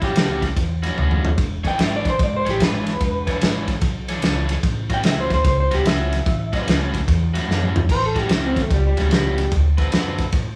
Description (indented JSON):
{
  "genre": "electric blues shuffle",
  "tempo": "147 BPM",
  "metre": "4/4",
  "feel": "swing 65% on 8ths",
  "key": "A mixolydian",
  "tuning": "A4 = 440 Hz",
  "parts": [
    { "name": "electric guitar through a small old amp", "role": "melody", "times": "0.0-9.5 s", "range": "G3 to G5", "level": "-26 LUFS", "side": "equal", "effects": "none" },
    { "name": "crunchy overdriven guitar", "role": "riff", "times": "0.0-10.2 s", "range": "A2 to C#5", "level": "-29 LUFS", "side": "equal", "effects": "none" },
    { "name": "upright bass", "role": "bass", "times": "0.0-10.6 s", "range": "E1 to A2", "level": "-24 LUFS", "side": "equal", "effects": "none" },
    { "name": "warm soul drum kit", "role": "drums", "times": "0.0-10.5 s", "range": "crash cymbal, kick drum, ride cymbal, snare drum, toms", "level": "-24 LUFS", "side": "equal", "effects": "none" }
  ],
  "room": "moderate studio reverb, RT60 0.6 s",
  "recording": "band playing live in one room, studio ambience",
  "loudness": "-20 LUFS",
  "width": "mono",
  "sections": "0.0-7.9 A section; 7.9-10.6 A section",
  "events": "clean electric guitar solo 0.0-7.9, 7.9-10.6; drum fill 1.0-1.4, 7.5-7.9",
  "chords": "0.0 A6; 1.4 E6; 4.6 A6; 9.5 D6"
}